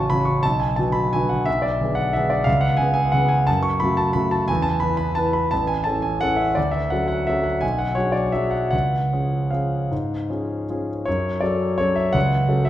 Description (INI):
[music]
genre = classical, piano waltz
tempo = 148-190 BPM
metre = 3/4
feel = rubato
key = F# minor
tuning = A4 = 439 Hz
[part]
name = warm concert grand piano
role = solo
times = 0.0-12.7 s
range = A1 to C#6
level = -19 LUFS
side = equal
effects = none
[sound]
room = wet recital hall reverb, RT60 1.5 s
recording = heard from further back in the room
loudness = -19 LUFS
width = side -12 dB against mid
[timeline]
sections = 0.0-11.1 A section; 11.1-12.7 B section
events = none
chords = 0.4 Bm; 1.5 G#dim/B; 2.5 C#5; 3.5 F#m; 4.5 E5; 5.5 A; 6.6 Dmaj7; 7.6 G#m7b5/B; 8.7 C#; 11.1 F#m